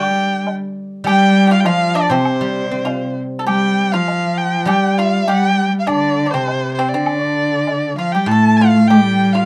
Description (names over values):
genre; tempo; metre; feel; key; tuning
chinese traditional, Chinese chamber ensemble; 100 BPM; 2/4; rubato; unclear; A4 = 440 Hz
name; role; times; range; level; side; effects
clear erhu; melody; 0.0-9.5 s; C5 to A5; -22 LUFS; equal; none
dark cello; second line; 0.0-9.5 s; C3 to A3; -18 LUFS; equal; none
pipa; second line; 0.0-9.5 s; C4 to A4; -24 LUFS; equal; none
guzheng; accompaniment; 0.0-9.5 s; A2 to C4; -26 LUFS; equal; none
woodblock; percussion; 0.5-7.8 s; none; -27 LUFS; equal; none
room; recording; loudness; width
moderate studio reverb, RT60 0.6 s; dark, warm production; -16 LUFS; mono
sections
0.0-8.3 A section; 8.3-9.5 B section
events
none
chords
none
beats
0.48 | 1.08 1.67 | 2.27 2.87 | 3.48 4.09 | 4.68 5.27 | 5.87 6.46 | 7.06 7.67 | 8.28 8.89